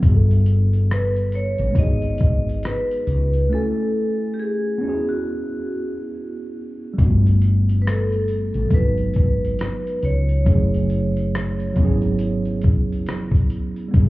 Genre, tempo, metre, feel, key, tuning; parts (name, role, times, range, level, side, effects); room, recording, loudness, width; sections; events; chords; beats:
lo-fi hip hop; 69 BPM; 4/4; swing 59% on 16ths; A4 = 437 Hz
mellow tine electric piano; accompaniment; 0.0-14.1 s; F#3 to G#5; -25 LUFS; right 1 dB; medium stereo tremolo, cassette tape
woody fretless electric bass; bass; 0.0-14.1 s; F#1 to C#2; -19 LUFS; equal
dusty soul sampler-style drum kit; drums; 0.0-14.1 s; hi-hat, kick drum, rim click; -18 LUFS; equal; vintage 12-bit sampler grit
vibraphone with medium hard mallets; melody; 0.9-12.6 s; F#4 to D#5; -26 LUFS; equal
little or no reverb; heard muffled through a wall, cassette tape, club reverb, EQ; -18 LUFS; side -18 dB against mid
0.0-7.0 A section; 7.0-14.1 B section
break 3.5-7.0
0.0 Gmaj7; 1.8 G#m7; 3.5 F#m7; 4.8 E69; 7.0 Gmaj7; 8.7 G#m7; 10.5 F#m7; 11.8 E69
| 0.03 0.90 1.77 2.64 | 3.50 4.38 5.24 6.11 | 6.98 7.85 8.72 9.59 | 10.46 11.33 12.20 13.07 | 13.94